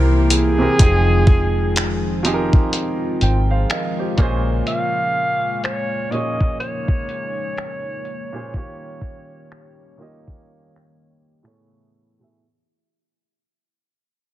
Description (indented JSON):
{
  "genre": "contemporary R&B",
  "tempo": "62 BPM",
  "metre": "4/4",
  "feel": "swing 58% on 16ths",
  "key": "Bb dorian",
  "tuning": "A4 = 440 Hz",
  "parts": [
    { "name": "warm baby grand piano", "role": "accompaniment", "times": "0.0-12.4 s", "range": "A2 to G5", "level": "-24 LUFS", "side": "right 2 dB", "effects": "none" },
    { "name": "chorused pulse-width pad", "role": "sustained chords", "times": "0.0-12.4 s", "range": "C3 to G#4", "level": "-26 LUFS", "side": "left 1 dB", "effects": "sidechain pumping" },
    { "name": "vintage muted fingered electric bass", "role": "bass", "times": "0.0-4.6 s", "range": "F1 to C2", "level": "-18 LUFS", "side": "equal", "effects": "none" },
    { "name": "clear alto saxophone", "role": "melody", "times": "0.3-11.4 s", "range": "Ab4 to F5", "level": "-23 LUFS", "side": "equal", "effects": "ping-pong delay" },
    { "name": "gated 80s digital drum machine", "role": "drums", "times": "0.3-11.7 s", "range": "finger snaps, hi-hat, kick drum", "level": "-18 LUFS", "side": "equal", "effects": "soft clipping on snare" }
  ],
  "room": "little or no reverb",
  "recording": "dense, heavily limited modern master, low-pass filter",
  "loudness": "-16 LUFS",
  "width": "side -14 dB against mid",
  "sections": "0.0-12.4 A section",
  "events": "filter sweep 0.0-12.4; fade-out 0.0-12.4; grand piano fill 2.7-4.7; break 10.5-12.4",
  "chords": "0.0 C7; 0.8 Fm7; 4.2 Bbm7; 8.5 Eb7; 11.4 Amaj7"
}